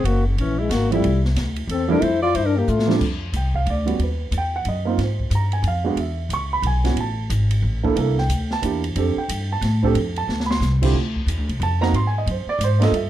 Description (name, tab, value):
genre	jazz, small-group swing and bop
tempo	181 BPM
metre	3/4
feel	swing 62% on 8ths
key	F major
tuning	A4 = 441 Hz
part	breathy trombone	melody	0.0-2.9 s	Db3 to F4	-22 LUFS	left 6 dB	none
part	breathy alto saxophone	second line	0.0-3.0 s	Bb3 to D5	-27 LUFS	right 2 dB	none
part	upright bass	bass	0.0-13.1 s	Gb1 to A2	-21 LUFS	equal	none
part	open jazz drum kit	drums	0.1-13.0 s	crash cymbal, hi-hat, kick drum, ride cymbal, snare drum	-30 LUFS	equal	none
part	dark upright piano	accompaniment	0.9-13.1 s	D3 to Db6	-23 LUFS	right 5 dB	none
room	light reverb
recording	dark, warm production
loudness	-18 LUFS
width	side -12 dB against mid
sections	0.0-3.0 A section; 3.0-10.9 B section; 10.9-13.1 B section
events	drum fill 2.7-3.0, 10.3-10.6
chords	0.0 Gb9; 1.0 Fmaj7; 3.0 Fsus2; 4.0 Ebm; 5.0 Ab6; 6.0 E; 7.0 A5; 8.0 C13; 9.0 F69; 10.9 Dm7; 11.9 G#5